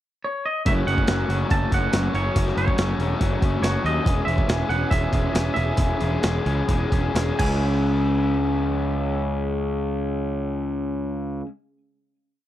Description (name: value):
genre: indie rock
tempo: 122-142 BPM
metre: 4/4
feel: straight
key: C# minor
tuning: A4 = 442 Hz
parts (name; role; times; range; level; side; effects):
- twangy electric guitar; melody; 0.2-11.4 s; C#5 to A5; -28 LUFS; right 2 dB; none
- raw garage guitar; riff; 0.7-11.5 s; C#3 to G#4; -26 LUFS; left 2 dB; overdrive
- fuzz picked electric bass; bass; 0.7-11.4 s; E1 to D#2; -24 LUFS; equal; overdrive
- breakbeat sampler-style drum kit; drums; 0.7-7.5 s; crash cymbal, hi-hat, kick drum, snare drum; -24 LUFS; equal; none
room: digital ambience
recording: dry, close 1970s-style studio recording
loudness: -20 LUFS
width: side -12 dB against mid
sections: 0.0-0.7 pickup bar; 0.7-7.6 verse; 7.6-11.6 final hit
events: slowing down 4.1-7.6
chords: 0.0 N.C.; 0.7 F#m; 4.1 C#m/E; 7.4 C#m